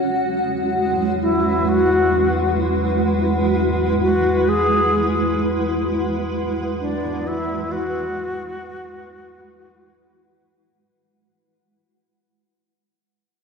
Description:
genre	ambient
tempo	free time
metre	none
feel	none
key	unclear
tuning	A4 = 440 Hz
part	granular cloud pad	sustained chords	0.0-11.0 s	G#3 to F#5	-20 LUFS	right 1 dB	built-in reverb
part	warm sub bass	bass	0.0-10.9 s	E2	-28 LUFS	equal	none
part	bright reedy wooden-headed alto flute	melody	1.2-10.5 s	D4 to G#4	-22 LUFS	left 2 dB	tape echo
room	wet spring reverb, RT60 2.3 s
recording	echo-heavy mix, cassette tape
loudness	-17 LUFS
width	side -5 dB against mid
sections	0.0-11.0 A section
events	fade-out on sub bass 0.0-11.0; fade-out 3.6-11.0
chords	0.0 Eadd9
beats	free time

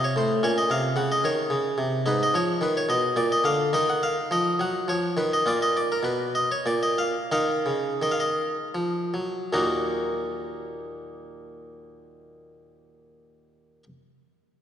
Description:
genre	classical, baroque-style suite movement for harpsichord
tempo	76-111 BPM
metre	3/4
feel	rubato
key	Eb minor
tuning	A4 = 440 Hz
part	harpsichord	solo	0.0-13.8 s	Eb2 to Gb5	-23 LUFS	equal	none
room	wet church reverb, RT60 2.7 s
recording	dark, warm production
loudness	-22 LUFS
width	side -9 dB against mid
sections	0.0-9.5 A section; 9.5-14.2 B section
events	slowing down 4.6-9.5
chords	0.4 Bbm; 2.1 Fm7b5/Ab; 3.2 Bb; 3.7 Ebm; 4.9 Db9; 5.5 Bb5; 6.1 N.C.; 7.3 Ebm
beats	| 0.42 0.97 1.51 | 2.07 2.63 3.18 | 3.75 4.32 4.90 | 5.47 6.05 6.66 | 7.32 8.03 8.76 | 9.54 10.31 11.08 | 11.85 12.62 13.39

